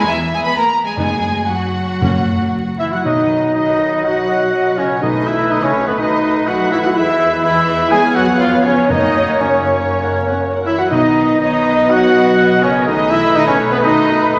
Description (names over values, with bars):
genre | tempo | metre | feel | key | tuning
quick classical-period movement for symphony orchestra | 114-126 BPM | 4/4 | rubato | B major | A4 = 440 Hz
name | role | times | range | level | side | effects
warm studio violin section | melody | 0.0-14.3 s | B4 to B5 | -26 LUFS | equal | none
rich studio violin section | second line | 0.0-14.3 s | E4 to G#5 | -28 LUFS | equal | none
warm studio viola section | accompaniment | 0.0-14.4 s | G#3 to F#5 | -28 LUFS | equal | none
rich studio cello section | bass | 0.0-14.3 s | B2 to B3 | -28 LUFS | equal | none
warm studio double bass section | bass | 0.0-14.4 s | B1 to F#2 | -31 LUFS | equal | none
timpani | percussion | 1.0-5.7, 8.9-11.6 s | F#2 to B2 | -24 LUFS | equal | none
clear oboe | second line | 2.8-14.3 s | B4 to G#5 | -26 LUFS | equal | none
warm clarinet | second line | 2.8-14.3 s | B4 to G#5 | -27 LUFS | equal | none
dark French horn section | sustained chords | 2.8-14.3 s | B3 to G#4 | -21 LUFS | equal | none
clear trumpet | stabs | 2.8-14.3 s | B3 to G#4 | -20 LUFS | equal | none
flute section | second line | 3.0-14.4 s | B4 to D#5 | -23 LUFS | equal | none
dark bassoon | accompaniment | 3.1-14.4 s | F#3 to B3 | -23 LUFS | equal | none
room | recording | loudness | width
wet scoring stage reverb, RT60 1.6 s | vinyl crackle | -15 LUFS | mono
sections
0.0-3.1 A section; 3.1-14.4 B section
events
none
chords
0.0 E; 1.0 B/F#; 2.0 F#; 3.1 B; 5.0 B7; 7.0 E; 7.9 C#7/E#; 8.9 F#; 10.9 B; 12.9 B7